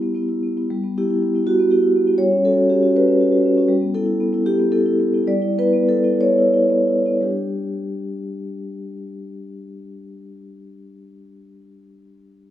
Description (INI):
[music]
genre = classical, contemporary piece for solo vibraphone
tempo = 54-82 BPM (dotted quarters)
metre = 6/8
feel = rubato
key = G lydian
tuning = A4 = 442 Hz
[part]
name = vibraphone with soft mallets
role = solo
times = 0.0-12.5 s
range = G3 to D5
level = -17 LUFS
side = equal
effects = none
[sound]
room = moderate recital hall reverb, RT60 1.6 s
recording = close, detailed microphones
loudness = -16 LUFS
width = side -12 dB against mid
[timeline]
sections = 0.7-7.2 A section; 7.2-11.2 B section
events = slowing down 2.9-7.2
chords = 0.0 G6; 2.2 Gmaj9#11; 3.7 G69; 7.2 G5